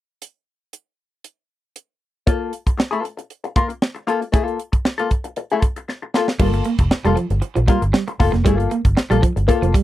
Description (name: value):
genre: funk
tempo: 116 BPM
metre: 4/4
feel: straight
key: unclear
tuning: A4 = 440 Hz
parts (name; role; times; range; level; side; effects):
- tight funk drum kit; drums; 0.2-9.8 s; crash cymbal, hi-hat, kick drum, snare drum; -18 LUFS; equal; none
- vintage hollow-body jazz guitar; accompaniment; 2.3-9.8 s; Bb3 to Bb4; -21 LUFS; left 5 dB; wah
- electric guitar at the edge of break-up; riff; 6.4-9.8 s; F3 to Bb3; -22 LUFS; right 5 dB; tremolo
- vintage muted fingered electric bass; bass; 6.4-9.7 s; F1 to Bb1; -19 LUFS; equal; none
room: little or no reverb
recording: dry, close 1970s-style studio recording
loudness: -17 LUFS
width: side -14 dB against mid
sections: 0.2-2.3 A section; 2.3-6.4 B section; 6.4-9.8 C section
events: drum fill 5.9-6.4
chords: 0.2 N.C.; 2.3 Fadd11/Bb; 6.4 Gm9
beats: | 0.21 0.73 1.24 1.76 | 2.27 2.79 3.31 3.82 | 4.34 4.85 5.37 5.88 | 6.40 6.91 7.43 7.94 | 8.46 8.97 9.48